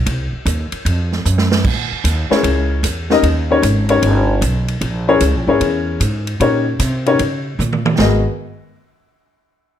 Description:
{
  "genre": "jazz, big band swing",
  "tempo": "151 BPM",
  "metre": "4/4",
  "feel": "swing 66% on 8ths",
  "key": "G# minor",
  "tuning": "A4 = 440 Hz",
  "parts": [
    { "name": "upright bass", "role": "bass", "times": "0.0-8.2 s", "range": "G1 to C#3", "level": "-17 LUFS", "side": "right 1 dB", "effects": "none" },
    { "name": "swinging big-band drum kit", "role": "drums", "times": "0.1-8.1 s", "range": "crash cymbal, hi-hat, kick drum, ride cymbal, snare drum, toms", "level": "-21 LUFS", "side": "right 3 dB", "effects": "none" },
    { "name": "warm upright piano", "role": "accompaniment", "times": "2.3-8.2 s", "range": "B3 to D#5", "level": "-15 LUFS", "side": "left 4 dB", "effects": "none" }
  ],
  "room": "moderate large studio reverb, RT60 0.9 s",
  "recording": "none",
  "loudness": "-14 LUFS",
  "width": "side -10 dB against mid",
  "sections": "0.0-1.6 A section; 1.6-8.0 B section; 8.0-9.6 C section",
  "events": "drum fill 1.3-1.6, 7.6-8.0",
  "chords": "0.1 Cm; 0.9 N.C.; 1.6 A#m7b5; 3.2 D#7; 4.8 A#m7b5; 6.4 D#7; 8.0 G#m9"
}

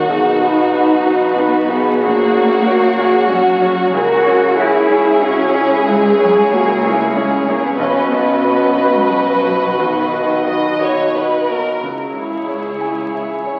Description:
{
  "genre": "cinematic, emotional film score for orchestra",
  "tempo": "93 BPM",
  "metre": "3/4",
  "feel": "rubato",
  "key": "C# dorian",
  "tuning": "A4 = 439 Hz",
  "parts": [
    { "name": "clear studio violin section", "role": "melody", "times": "0.0-13.6 s", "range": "B4 to D#5", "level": "-31 LUFS", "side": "equal", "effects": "none" },
    { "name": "warm studio violin section", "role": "second line", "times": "0.0-11.8 s", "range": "F#4 to D#5", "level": "-20 LUFS", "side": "equal", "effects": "none" },
    { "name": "bright grand piano", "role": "accompaniment", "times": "0.0-13.6 s", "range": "A#1 to G#5", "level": "-21 LUFS", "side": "equal", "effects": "none" },
    { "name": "rich studio viola section", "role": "accompaniment", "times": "0.0-13.6 s", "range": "D#4 to G#4", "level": "-26 LUFS", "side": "equal", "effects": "none" },
    { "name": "dark French horn section", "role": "sustained chords", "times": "0.0-11.5 s", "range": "C#4 to A#4", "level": "-20 LUFS", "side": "equal", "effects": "none" },
    { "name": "dark studio cello section", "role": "bass", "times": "0.0-13.6 s", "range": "C#2 to F#4", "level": "-22 LUFS", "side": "equal", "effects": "none" },
    { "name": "rich studio double bass section", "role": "bass", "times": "0.0-12.4 s", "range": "A#1 to C#2", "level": "-35 LUFS", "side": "equal", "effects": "none" }
  ],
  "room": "wet church reverb, RT60 2.5 s",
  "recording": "very old 78 rpm record, vinyl crackle",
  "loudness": "-15 LUFS",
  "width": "mono",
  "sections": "0.0-11.8 A section; 11.8-13.6 B section",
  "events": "none",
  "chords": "0.1 B; 2.0 F#/A#; 4.0 C#m; 7.8 B; 11.8 C#m"
}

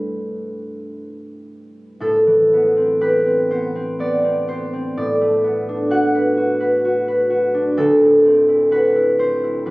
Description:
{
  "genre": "classical, solo harp piece",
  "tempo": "57-65 BPM",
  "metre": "3/4",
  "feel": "rubato",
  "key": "unclear",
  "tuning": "A4 = 440 Hz",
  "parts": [
    { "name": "concert harp", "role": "solo", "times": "0.0-9.7 s", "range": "D2 to F#5", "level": "-15 LUFS", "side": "equal", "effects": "none" }
  ],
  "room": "wet recital hall reverb, RT60 1.4 s",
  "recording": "recorded on a phone in the room, club reverb, compression",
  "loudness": "-15 LUFS",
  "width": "side -22 dB against mid",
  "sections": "0.0-9.7 A section",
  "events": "none",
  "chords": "0.0 Gadd9; 2.0 Am9; 5.0 Bm7/A; 7.8 D9"
}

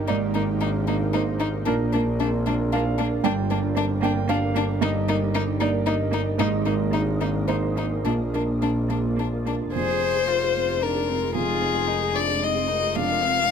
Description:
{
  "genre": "neoclassical piano and strings",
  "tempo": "113 BPM",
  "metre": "3/4",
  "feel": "rubato",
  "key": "F dorian",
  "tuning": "A4 = 439 Hz",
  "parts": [
    { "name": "felt-muted upright piano", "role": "accompaniment", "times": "0.0-13.5 s", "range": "F2 to G5", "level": "-26 LUFS", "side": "right 6 dB", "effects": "none" },
    { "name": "shimmering ambient pad", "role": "sustained chords", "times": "0.0-13.5 s", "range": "Ab3 to Eb5", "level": "-34 LUFS", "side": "left 1 dB", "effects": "chorus, built-in reverb" },
    { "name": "clear double bass", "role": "bass", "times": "0.0-13.5 s", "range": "F1 to Bb1", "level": "-26 LUFS", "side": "equal", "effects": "none" },
    { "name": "warm violin", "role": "melody", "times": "0.1-13.5 s", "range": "D4 to F5", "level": "-26 LUFS", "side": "left 8 dB", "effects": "none" },
    { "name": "warm cello", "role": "second line", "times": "0.1-13.5 s", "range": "Bb3 to Ab4", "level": "-32 LUFS", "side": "right 6 dB", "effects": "none" }
  ],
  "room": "light reverb",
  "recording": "close, detailed microphones",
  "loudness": "-21 LUFS",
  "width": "side -7 dB against mid",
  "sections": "0.0-9.7 A section; 9.7-13.5 B section",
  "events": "none",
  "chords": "0.1 Absus2; 1.7 Bb; 3.2 Gm; 4.8 Eb/G; 6.4 Absus2; 8.0 Bb; 9.7 Fm7; 12.9 Bbadd9/F"
}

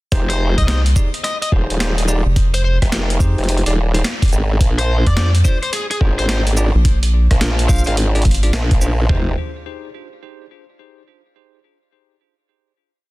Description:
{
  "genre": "glitch hop",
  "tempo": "107 BPM",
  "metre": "4/4",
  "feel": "swing 64% on 16ths",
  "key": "F dorian",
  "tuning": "A4 = 440 Hz",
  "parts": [
    { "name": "bell-like tine electric piano", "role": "stabs", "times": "0.1-9.3 s", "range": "D4 to D5", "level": "-26 LUFS", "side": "equal", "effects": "vintage 12-bit sampler grit, sidechain pumping, ping-pong delay" },
    { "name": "formant-sweep wobble bass", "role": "bass", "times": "0.1-9.4 s", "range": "Eb1 to Bb1", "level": "-17 LUFS", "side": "equal", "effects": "chorus, overdrive" },
    { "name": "boom bap sampler-style drum kit", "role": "drums", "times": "0.1-9.3 s", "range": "kick drum, toms", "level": "-16 LUFS", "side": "equal", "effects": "none" },
    { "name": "boom bap sampler-style drum kit", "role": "drums", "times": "0.1-9.0 s", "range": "hi-hat, rim click, shaker, snare drum", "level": "-24 LUFS", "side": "equal", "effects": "none" },
    { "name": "biting lead guitar", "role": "melody", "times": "0.3-7.9 s", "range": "Ab4 to F5", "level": "-25 LUFS", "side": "left 2 dB", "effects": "overdrive, ping-pong delay" },
    { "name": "rubbery square bass", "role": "bass", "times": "0.6-8.5 s", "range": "F1 to F2", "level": "-14 LUFS", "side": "equal", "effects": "none" }
  ],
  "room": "digital ambience",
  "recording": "dense, heavily limited modern master",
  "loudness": "-14 LUFS",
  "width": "side -20 dB against mid",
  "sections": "0.1-9.1 drop; 9.1-11.3 final chord",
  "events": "drop 0.1-9.1",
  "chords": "0.1 Fm7; 4.6 Bb7; 9.1 Fm7"
}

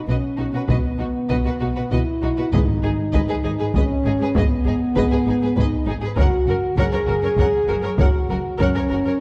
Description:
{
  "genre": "cinematic, epic orchestral film score",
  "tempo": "99 BPM",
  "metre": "3/4",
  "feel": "straight",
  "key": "G# minor",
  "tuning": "A4 = 440 Hz",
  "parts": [
    { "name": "mellow French horn section", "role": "sustained chords", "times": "0.0-9.2 s", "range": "B3 to G#4", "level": "-25 LUFS", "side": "equal", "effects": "none" },
    { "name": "impact", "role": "sound effects", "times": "0.0-0.7 s", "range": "none", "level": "barely audible", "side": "none", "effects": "none" },
    { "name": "warm symphonic violin section", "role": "melody", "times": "0.1-9.1 s", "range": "F#4 to F#5", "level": "-36 LUFS", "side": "equal", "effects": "none" },
    { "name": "rich studio violin section", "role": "second line", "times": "0.1-9.1 s", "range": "D#4 to C#5", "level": "-33 LUFS", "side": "equal", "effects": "none" },
    { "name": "warm symphonic viola section", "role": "accompaniment", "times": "0.1-9.1 s", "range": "F#4 to A#4", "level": "-32 LUFS", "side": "equal", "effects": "none" },
    { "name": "rich symphonic cello section", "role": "bass", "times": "0.1-9.1 s", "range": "F#2 to B2", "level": "-31 LUFS", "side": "equal", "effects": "none" },
    { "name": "rich symphonic double bass section", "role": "bass", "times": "0.1-9.0 s", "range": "F#1 to B1", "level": "-29 LUFS", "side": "equal", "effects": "none" },
    { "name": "taiko ensemble", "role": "drums", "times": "0.7-9.2 s", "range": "none", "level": "-25 LUFS", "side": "equal", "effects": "none" },
    { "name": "timpani", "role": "percussion", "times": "2.5-3.4 s", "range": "G#2", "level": "-29 LUFS", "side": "equal", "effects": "none" }
  ],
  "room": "moderate scoring stage reverb, RT60 1.7 s",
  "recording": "dark, warm production",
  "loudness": "-20 LUFS",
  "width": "mono",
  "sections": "0.0-9.2 A section",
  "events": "impact 0.0-0.7",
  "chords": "0.0 B5; 2.5 G#m; 6.2 F#"
}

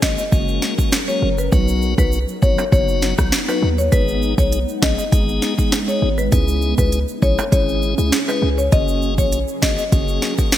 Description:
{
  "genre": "dancehall",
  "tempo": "100 BPM",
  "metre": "4/4",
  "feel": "straight",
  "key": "unclear",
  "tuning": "A4 = 440 Hz",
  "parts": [
    { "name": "marimba with medium mallets", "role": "melody", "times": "0.0-9.9 s", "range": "B4 to D#5", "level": "-24 LUFS", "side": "left 3 dB", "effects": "digital delay" },
    { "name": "tonewheel organ", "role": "accompaniment", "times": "0.0-10.6 s", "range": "F#3 to G#4", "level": "-24 LUFS", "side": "left 4 dB", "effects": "sidechain pumping" },
    { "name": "ethereal airy pad", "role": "sustained chords", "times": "0.0-10.6 s", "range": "C#3 to A#4", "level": "-27 LUFS", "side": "right 2 dB", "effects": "ensemble chorus, built-in reverb, sidechain pumping" },
    { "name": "warm 808-style bass", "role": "bass", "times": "0.0-10.2 s", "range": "F#1 to D#2", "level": "-20 LUFS", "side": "equal", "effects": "none" },
    { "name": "afro-pop drum kit", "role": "drums", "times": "0.0-10.6 s", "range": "hi-hat, kick drum, rim click, snare drum", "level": "-18 LUFS", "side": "equal", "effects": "gated reverb" },
    { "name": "egg shaker and timbales", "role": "percussion", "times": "0.0-10.6 s", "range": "none", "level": "-31 LUFS", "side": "right 7 dB", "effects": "none" }
  ],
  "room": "light reverb, digital ambience",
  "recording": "bright 1980s-style digital production",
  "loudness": "-15 LUFS",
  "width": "side -12 dB against mid",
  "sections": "0.0-10.6 A section",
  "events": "break 0.0-3.9",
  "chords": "0.0 F#add9; 1.5 B; 3.9 G#m; 6.3 C#m; 8.7 F#add9"
}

